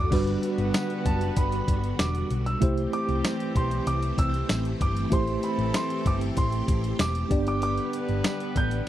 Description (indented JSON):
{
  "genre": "1980s-style pop",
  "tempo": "96 BPM",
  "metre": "4/4",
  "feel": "straight",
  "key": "G major",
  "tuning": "A4 = 440 Hz",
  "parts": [
    { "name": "warm concert grand piano", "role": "melody", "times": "0.0-8.9 s", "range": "A5 to G6", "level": "-32 LUFS", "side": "right 2 dB", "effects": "slapback echo" },
    { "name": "tine electric piano", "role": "accompaniment", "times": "0.0-8.9 s", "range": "G3 to D5", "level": "-30 LUFS", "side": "right 2 dB", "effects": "overdrive, fast stereo tremolo" },
    { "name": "string machine, violins", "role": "sustained chords", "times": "0.0-8.9 s", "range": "D3 to G4", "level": "-33 LUFS", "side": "left 1 dB", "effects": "ensemble chorus" },
    { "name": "hollow-body short-scale picked electric bass", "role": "bass", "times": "0.0-8.8 s", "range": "E1 to C2", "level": "-28 LUFS", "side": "equal", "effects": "none" },
    { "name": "mellow horn section", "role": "stabs", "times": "0.1-8.9 s", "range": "E3 to B4", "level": "-36 LUFS", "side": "left 3 dB", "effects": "none" },
    { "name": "clean 12-bit digital drum machine", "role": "drums", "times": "0.1-8.9 s", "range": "crash cymbal, hi-hat, kick drum, snare drum, tambourine", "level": "-26 LUFS", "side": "equal", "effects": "none" }
  ],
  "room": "little or no reverb",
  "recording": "dry, close 1970s-style studio recording",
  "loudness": "-23 LUFS",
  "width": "side -12 dB against mid",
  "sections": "0.0-8.9 A section",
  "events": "none",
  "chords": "0.1 Gmaj7; 2.6 C6; 5.1 Am7; 7.3 G",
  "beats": "| 0.12 0.74 1.37 1.99 | 2.62 3.24 3.87 4.49 | 5.12 5.74 6.37 6.99 | 7.62 8.24 8.87"
}